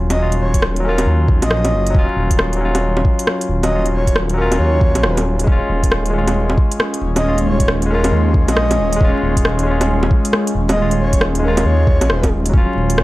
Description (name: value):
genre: future garage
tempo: 136 BPM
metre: 4/4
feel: swing 63% on 16ths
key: Eb minor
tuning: A4 = 440 Hz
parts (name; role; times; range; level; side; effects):
- barky tine electric piano; accompaniment; 0.0-13.0 s; Gb3 to F4; -20 LUFS; left 2 dB; overdrive, sidechain pumping, analog delay
- swelling detuned saw bass; bass; 0.0-13.0 s; Eb1 to Eb2; -18 LUFS; equal; tube saturation, sidechain pumping
- breathy flute-like synth lead; melody; 0.1-12.3 s; Bb4 to Eb5; -23 LUFS; right 1 dB; chorus, analog delay
- organic electronic drum kit; drums; 0.1-13.0 s; bongos, hi-hat, rim click; -20 LUFS; equal; overdrive, small room ambience
- electronic kick drum; drums; 0.5-12.6 s; none; -15 LUFS; equal; overdrive, small room ambience
- airy breathy pad; sustained chords; 6.0-13.0 s; Gb3 to F4; -23 LUFS; equal; chorus, phaser, sidechain pumping
room: digital ambience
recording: dry, gritty hardware recording, vinyl crackle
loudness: -13 LUFS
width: side -18 dB against mid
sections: 0.0-12.5 A section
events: none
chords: 0.0 Ebm9; 5.5 Db/Eb; 12.5 Ebm9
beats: | 0.18 0.62 1.07 1.51 | 1.95 2.39 2.83 3.27 | 3.71 4.15 4.59 5.04 | 5.48 5.92 6.36 6.80 | 7.24 7.68 8.12 8.57 | 9.01 9.45 9.89 10.33 | 10.77 11.21 11.65 12.10 | 12.54 12.98